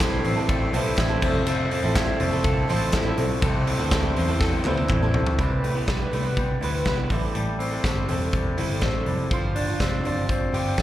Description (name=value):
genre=jangly indie pop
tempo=122 BPM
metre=4/4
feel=straight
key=C major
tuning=A4 = 441 Hz
part: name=fingerpicked twelve-string acoustic guitar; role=accompaniment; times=0.0-10.8 s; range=A2 to C5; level=-29 LUFS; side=right 4 dB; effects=slapback echo
part: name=clear woodwind section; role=sustained chords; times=0.0-5.4 s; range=A4 to C6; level=-36 LUFS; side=equal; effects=none
part: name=electric guitar through a small old amp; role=arpeggios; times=0.0-10.8 s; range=F3 to A4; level=-27 LUFS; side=left 2 dB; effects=spring reverb
part: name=vintage muted picked electric bass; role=bass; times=0.0-10.8 s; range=E1 to C3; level=-27 LUFS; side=equal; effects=none
part: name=big rock drum kit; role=drums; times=0.0-10.8 s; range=crash cymbal, hi-hat, kick drum, ride cymbal, snare drum, toms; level=-26 LUFS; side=equal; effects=none
part: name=group handclap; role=percussion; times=0.0-5.0 s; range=none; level=-36 LUFS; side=left 2 dB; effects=none
room=little or no reverb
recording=live gig heard through the venue's PA, club reverb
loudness=-21 LUFS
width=side -13 dB against mid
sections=0.0-5.4 A section; 5.4-10.8 B section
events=drum fill 4.4-5.4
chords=0.0 Am7; 1.2 Fmaj7; 3.4 C6; 7.1 Am7; 9.3 G7sus4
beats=0.00 0.49 0.98 | 1.47 1.96 2.45 2.94 | 3.43 3.92 4.41 4.90 | 5.39 5.88 6.37 6.86 | 7.35 7.84 8.33 8.82 | 9.31 9.80 10.29 10.78